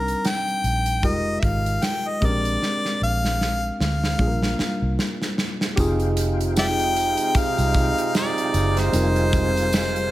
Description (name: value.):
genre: lush 1970s-style soul.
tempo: 76 BPM.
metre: 4/4.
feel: swing 58% on 16ths.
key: F dorian.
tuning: A4 = 439 Hz.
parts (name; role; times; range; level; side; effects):
clear harmonica; melody; 0.0-10.1 s; Bb4 to G5; -24 LUFS; left 1 dB; none.
tine electric piano; accompaniment; 0.0-10.1 s; G3 to Bb4; -28 LUFS; left 1 dB; none.
vintage muted fingered electric bass; bass; 0.0-10.1 s; F1 to D2; -24 LUFS; equal; none.
modern studio drum kit; drums; 0.1-10.1 s; hi-hat, kick drum, snare drum; -26 LUFS; right 1 dB; none.
tonewheel organ; sustained chords; 5.8-10.1 s; F4 to Ab5; -33 LUFS; equal; slow rotary speaker, overdrive, chorus vibrato.
clear trombone section; stabs; 5.8-10.1 s; C3 to Eb4; -27 LUFS; right 6 dB; none.
tambourine; percussion; 5.8-9.9 s; none; -39 LUFS; left 4 dB; none.
vibraphone with medium hard mallets; texture; 5.8-9.2 s; Eb4 to F4; -34 LUFS; left 5 dB; none.
room: light reverb, small room ambience.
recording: none.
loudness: -19 LUFS.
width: side -15 dB against mid.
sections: 0.0-5.8 A section; 5.8-10.1 B section.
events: drum fill 2.6-5.8.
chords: 0.0 Cm9; 1.0 Fm11; 2.2 Bb13; 4.2 Gm7/Bb; 5.8 Fm9.